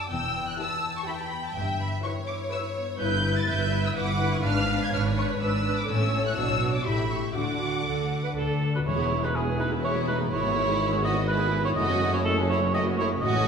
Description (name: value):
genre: cinematic, playful, whimsical film cue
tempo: 124 BPM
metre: 3/4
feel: straight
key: D major, E major from 8.9 s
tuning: A4 = 439 Hz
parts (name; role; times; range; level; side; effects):
- warm studio violin section; melody; 0.0-13.5 s; G#4 to A6; -32 LUFS; left 2 dB; none
- rich studio violin section; second line; 0.0-13.5 s; B3 to A5; -33 LUFS; left 1 dB; none
- concert harp; arpeggios; 0.0-13.5 s; E2 to E5; -33 LUFS; left 4 dB; none
- warm studio cello section; bass; 0.1-13.5 s; E2 to D3; -31 LUFS; right 1 dB; none
- warm studio double bass section; bass; 0.1-13.5 s; E1 to D2; -33 LUFS; right 1 dB; none
- warm studio viola section; accompaniment; 0.6-13.5 s; G#3 to B4; -31 LUFS; right 1 dB; none
- mellow cor anglais; second line; 8.4-13.5 s; G#4 to D#5; -28 LUFS; right 3 dB; none
- mellow tuba; bass; 8.9-13.5 s; E1 to A1; -31 LUFS; right 1 dB; none
room: wet recital hall reverb, RT60 1.6 s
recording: recorded in a church or concert hall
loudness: -24 LUFS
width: side -6 dB against mid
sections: 0.0-8.9 A section; 8.9-13.5 B section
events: none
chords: 0.1 Em; 1.6 Em/G; 4.4 G#dim7; 5.9 A; 6.4 Bm; 6.9 A7; 7.4 D; 8.9 E; 10.3 E/G#; 11.8 F#m7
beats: | 0.12 0.60 1.08 | 1.56 2.04 2.52 | 3.01 3.49 3.96 | 4.45 4.93 5.41 | 5.89 6.37 6.86 | 7.36 7.86 8.36 | 8.86 9.35 9.84 | 10.32 10.81 11.29 | 11.78 12.27 12.75 | 13.23